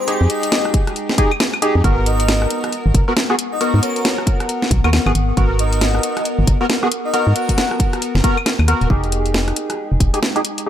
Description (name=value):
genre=UK garage, two-step garage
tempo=136 BPM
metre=4/4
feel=swing 61% on 16ths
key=unclear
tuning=A4 = 436 Hz
part: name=airy dreamy lead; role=melody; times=0.0-7.7 s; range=C5 to Gb5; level=-24 LUFS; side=left 2 dB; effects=chorus
part: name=warbly tape-like pad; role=texture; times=0.0-10.7 s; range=Ab3 to G5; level=-28 LUFS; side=left 1 dB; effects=chorus, built-in reverb, sidechain pumping
part: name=percussive organ stab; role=stabs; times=0.1-10.7 s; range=Cb4 to Bb4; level=-21 LUFS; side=equal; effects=ensemble chorus, digital delay
part: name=house drum kit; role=drums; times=0.1-10.6 s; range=claves, hi-hat, rim click, snare drum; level=-20 LUFS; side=equal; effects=none
part: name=organ-like FM bass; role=bass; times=0.2-10.1 s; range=Eb1 to Ab2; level=-16 LUFS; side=equal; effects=none
part: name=electronic kick drum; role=drums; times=0.7-10.1 s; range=none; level=-17 LUFS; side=equal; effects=none
room=light reverb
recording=none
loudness=-15 LUFS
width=side -10 dB against mid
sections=0.0-8.9 A section; 8.9-10.7 B section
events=drop 0.0-8.9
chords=0.0 Fm9 (rootless); 1.8 Abm9; 8.9 Fm9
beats=| 0.08 0.52 0.96 1.40 | 1.84 2.28 2.72 3.17 | 3.61 4.05 4.49 4.93 | 5.37 5.81 6.25 6.70 | 7.14 7.58 8.02 8.46 | 8.90 9.34 9.78 10.22 | 10.66